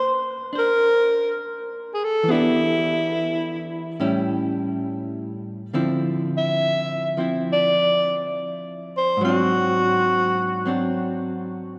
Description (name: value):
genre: jazz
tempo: 69 BPM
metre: 4/4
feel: swing 69% on 8ths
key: unclear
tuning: A4 = 440 Hz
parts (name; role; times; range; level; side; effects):
- breathy alto saxophone; melody; 0.0-10.9 s; E4 to E5; -24 LUFS; equal; none
- archtop guitar, miked and amplified; accompaniment; 0.0-11.8 s; G#2 to C5; -27 LUFS; equal; none
room: wet cathedral reverb, RT60 4.5 s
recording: recorded in a church or concert hall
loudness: -22 LUFS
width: mono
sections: 0.0-11.8 A section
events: none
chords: 0.0 Bbadd9; 2.3 Em7; 4.0 A7; 5.7 Dm9; 9.2 G#7#11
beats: 0.54 1.41 | 2.27 3.14 4.00 4.87 | 5.73 6.60 7.46 8.32 | 9.19 10.05 10.91 11.78